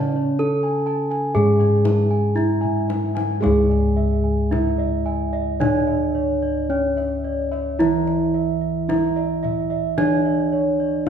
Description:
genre	Javanese gamelan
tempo	55-65 BPM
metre	4/4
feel	straight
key	C# pelog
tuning	A4 = 445 Hz
part	gamelan-type bronze metallophone	melody	0.0-11.1 s	C#4 to A4-20c	-22 LUFS	right 1 dB	none
part	gamelan-type bronze metallophone	accompaniment	0.0-11.1 s	C#3 to G#3-30c	-26 LUFS	right 4 dB	none
part	gamelan-type bossed gongs	arpeggios	0.0-10.8 s	C#5 to A5-20c	-28 LUFS	left 4 dB	none
part	gamelan-type bronze metallophone	arpeggios	0.0-11.0 s	C#5 to A5-20c	-29 LUFS	right 5 dB	none
part	gamelan-type bossed gongs	bass	0.0-11.1 s	C#2 to G#4-30c	-24 LUFS	left 1 dB	none
part	kendang	percussion	0.4-11.1 s	none	-30 LUFS	left 5 dB	none
room	wet recital hall reverb, RT60 1.3 s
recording	recorded in a church or concert hall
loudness	-18 LUFS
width	side -8 dB against mid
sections	0.0-3.4 A section; 3.4-11.1 B section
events	drum fill 2.6-3.4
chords	none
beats	0.39 1.35 2.35 | 3.42 4.51 5.60 6.70 | 7.79 8.88 9.97 11.06

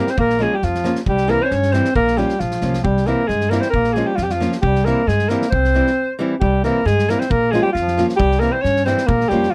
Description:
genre	balkan folk, Balkan wedding band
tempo	135 BPM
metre	2/4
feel	straight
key	C phrygian dominant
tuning	A4 = 440 Hz
part	warm alto saxophone	melody	0.0-9.5 s	F4 to Db5	-21 LUFS	equal	none
part	mellow clarinet	second line	0.0-9.5 s	F3 to Db4	-25 LUFS	equal	none
part	nylon-string guitar	accompaniment	0.0-9.5 s	E3 to G4	-24 LUFS	equal	none
part	loose indie drum kit	percussion	0.1-9.5 s	kick drum, snare drum	-28 LUFS	equal	none
part	upright bass	bass	0.2-9.5 s	Bb1 to G2	-24 LUFS	equal	none
room	little or no reverb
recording	none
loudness	-18 LUFS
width	mono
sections	0.0-6.4 A section; 6.4-9.5 A section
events	break 6.0-6.4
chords	0.2 Bbm; 1.1 C; 2.0 Bbm; 2.8 C; 3.7 Bbm; 4.6 C; 7.3 Bbm; 8.2 C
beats	| 0.17 0.62 | 1.07 1.51 | 1.96 2.40 | 2.85 3.29 | 3.74 4.19 | 4.63 5.08 | 5.53 5.97 | 6.42 6.86 | 7.31 7.75 | 8.20 8.64 | 9.09 9.53

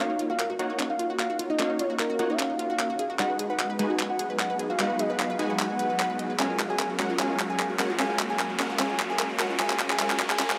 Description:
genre	future bass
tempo	150 BPM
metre	4/4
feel	half-time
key	Eb minor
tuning	A4 = 438 Hz
part	soft octave-layered synth lead	melody	0.0-10.6 s	Bb4 to Ab5	-33 LUFS	equal	chorus, delay
part	ethereal airy pad	sustained chords	1.8-10.6 s	Gb3 to F5	-41 LUFS	equal	ensemble chorus, built-in reverb
part	unison pluck	arpeggios	0.0-10.6 s	Db4 to Eb5	-36 LUFS	equal	delay
part	supersaw stab	riff	0.0-10.6 s	Ab3 to Ab5	-33 LUFS	equal	low-pass filter
part	riser	sound effects	1.1-10.6 s	none	-41 LUFS	equal	none
part	pop drum kit	drums	0.2-10.6 s	handclaps, hi-hat	-31 LUFS	equal	high-pass filter on snare, studio reverb, high-pass filter on hats
room	moderate huge ambient reverb, RT60 4.9 s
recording	high-pass filter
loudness	-27 LUFS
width	mono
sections	0.0-10.6 A section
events	build-up 0.0-10.6; drum fill 0.0-10.6; filter sweep on supersaw synth 0.0-10.6; filter sweep 0.0-10.6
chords	0.0 Ebm9; 3.0 Abm7; 6.4 Gbmaj9; 9.4 Bmaj7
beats	0.39 0.79 1.19 | 1.59 1.99 2.39 2.79 | 3.19 3.59 3.99 4.39 | 4.79 5.19 5.59 5.99 | 6.39 6.79 7.19 7.59 | 7.99 8.39 8.79 9.19 | 9.59 9.99 10.39

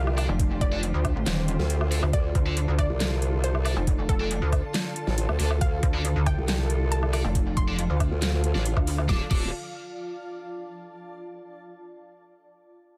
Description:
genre	heavy wobble dubstep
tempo	138 BPM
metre	4/4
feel	half-time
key	D minor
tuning	A4 = 440 Hz
part	unison pluck	melody	0.0-9.5 s	A4 to D6	-38 LUFS	equal	digital delay
part	muted studio string section	sustained chords	0.0-9.3 s	D3 to A4	-39 LUFS	equal	sidechain pumping, low-pass filter
part	formant-sweep wobble bass	bass	0.0-9.5 s	D1 to D2	-27 LUFS	equal	chorus, overdrive
part	granular cloud pad	texture	0.0-10.8 s	F4 to A5	-42 LUFS	equal	built-in reverb, sidechain pumping
part	dubstep drum kit	drums	0.1-9.4 s	crash cymbal, handclaps, hi-hat, snare drum, woodblock	-34 LUFS	equal	small room reverb
part	scooped high-gain guitar	stabs	0.2-9.5 s	D4 to D5	-39 LUFS	equal	distortion, digital delay
part	pulsing pluck wobble bass	bass	0.3-9.1 s	Eb1 to D2	-28 LUFS	equal	chorus, overdrive
part	electronic kick drum	drums	0.4-9.4 s	none	-28 LUFS	equal	small room reverb
room	little or no reverb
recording	dense, heavily limited modern master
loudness	-25 LUFS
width	mono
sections	0.0-9.1 A section; 9.1-10.8 B section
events	drop 0.0-9.1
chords	0.0 Dm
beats	| 0.40 0.83 1.26 1.70 | 2.13 2.57 3.00 3.44 | 3.87 4.31 4.74 5.18 | 5.61 6.05 6.48 6.92 | 7.35 7.79 8.22 8.65 | 9.09 9.53 9.96 10.39

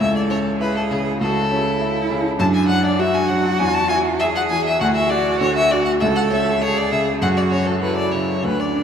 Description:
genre	quick classical-period movement for piano trio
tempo	100 BPM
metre	4/4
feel	rubato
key	A major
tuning	A4 = 439 Hz
part	rich violin	melody	0.0-8.8 s	G#4 to A5	-21 LUFS	left 3 dB	none
part	rich cello	second line	0.0-8.8 s	D4 to A4	-22 LUFS	right 5 dB	none
part	bright grand piano	accompaniment	0.0-8.8 s	C#2 to A4	-20 LUFS	left 1 dB	none
room	wet cathedral reverb, RT60 5.6 s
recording	in a vast, echoing space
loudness	-16 LUFS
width	side -8 dB against mid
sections	0.0-8.8 A section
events	none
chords	0.0 A/C#; 2.4 D/F#; 3.6 Eadd9; 4.8 Dadd9; 6.0 A/C#; 7.2 F#m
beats	| 0.00 0.60 1.20 1.80 | 2.39 2.99 3.59 4.20 | 4.81 5.41 6.01 6.61 | 7.22 7.82 8.44

